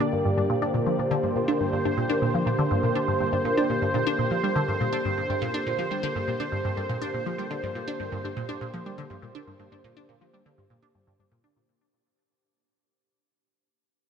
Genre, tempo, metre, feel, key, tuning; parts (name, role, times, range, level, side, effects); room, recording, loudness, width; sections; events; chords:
ambient, sequencer-driven space music; 122 BPM; 4/4; straight; G minor; A4 = 440 Hz
sweeping resonant pad; sustained chords; 0.0-11.7 s; D3 to D5; -27 LUFS; right 1 dB; chorus
resonant blip pluck; riff; 0.0-11.6 s; G2 to D4; -28 LUFS; equal; phaser, wide subtle chorus, ping-pong delay
wet huge ambient reverb, RT60 8.8 s; -24 LUFS; side -7 dB against mid
0.0-11.7 A section
fade-out 3.8-11.7
0.0 Gm